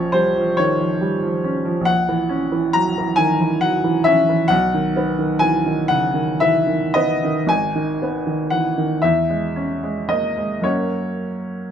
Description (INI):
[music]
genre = classical, romantic nocturne for solo piano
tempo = 35-47 BPM (dotted quarters)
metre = 12/8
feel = rubato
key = B major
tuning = A4 = 440 Hz
[part]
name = bright baby grand piano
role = solo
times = 0.0-11.7 s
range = G#1 to A#5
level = -17 LUFS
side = equal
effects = none
[sound]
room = moderate studio reverb, RT60 0.7 s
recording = none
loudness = -17 LUFS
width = side -8 dB against mid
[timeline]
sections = 0.0-11.7 A section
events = none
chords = 0.0 Bbm; 1.9 F#7/A#; 4.5 B; 7.5 G#m; 9.0 C#m/E; 10.6 F#